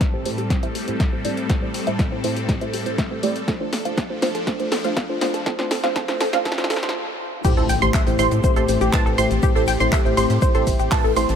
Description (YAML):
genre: progressive house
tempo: 121 BPM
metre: 4/4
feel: straight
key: A minor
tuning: A4 = 440 Hz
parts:
  - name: supersaw pad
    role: sustained chords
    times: 0.0-11.4 s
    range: F2 to A4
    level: -28 LUFS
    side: left 1 dB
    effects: phaser, sidechain pumping
  - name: tight sequenced synth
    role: arpeggios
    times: 0.0-11.2 s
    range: G4 to C6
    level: -25 LUFS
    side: equal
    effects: chorus, phaser, sidechain pumping, digital delay
  - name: deep mellow chord stab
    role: stabs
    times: 0.0-11.3 s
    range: A2 to D5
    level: -24 LUFS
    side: right 1 dB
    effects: chorus, vintage 12-bit sampler grit, sidechain pumping, digital delay
  - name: deep house drum kit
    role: drums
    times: 0.0-11.4 s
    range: crash cymbal, handclaps, hi-hat, shaker, snare drum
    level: -27 LUFS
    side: left 1 dB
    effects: overdrive
  - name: electronic kick drum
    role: drums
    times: 0.0-11.0 s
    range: none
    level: -21 LUFS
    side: equal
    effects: overdrive
  - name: natural country drum kit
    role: drums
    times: 7.4-11.4 s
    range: hi-hat, shaker, snare drum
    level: -39 LUFS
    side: right 1 dB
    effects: none
  - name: impact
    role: sound effects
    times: 7.4-9.4 s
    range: none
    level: -30 LUFS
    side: left 1 dB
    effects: none
  - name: tight sequencer bass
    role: bass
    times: 7.6-11.4 s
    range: A1 to A2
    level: -23 LUFS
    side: equal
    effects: sidechain pumping
room: light reverb, digital ambience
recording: high-pass filter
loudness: -18 LUFS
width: side -8 dB against mid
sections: 0.0-7.4 A section; 7.4-11.4 B section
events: build-up 0.0-7.4; drum fill 0.0-7.0; filter sweep on synth arpeggio sound 0.0-7.4; filter sweep on synth stab 0.0-7.4; filter sweep 0.0-7.4; stop 7.0-7.4; drop 7.4-11.4; impact 7.4-9.4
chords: 0.0 Am7; 3.5 F6; 7.4 Am7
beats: 0.01 0.50 1.00 | 1.50 1.99 2.49 2.98 | 3.48 3.98 4.47 4.97 | 5.46 5.96 6.45 6.95 | 7.45 7.94 8.44 8.93 | 9.43 9.93 10.42 10.92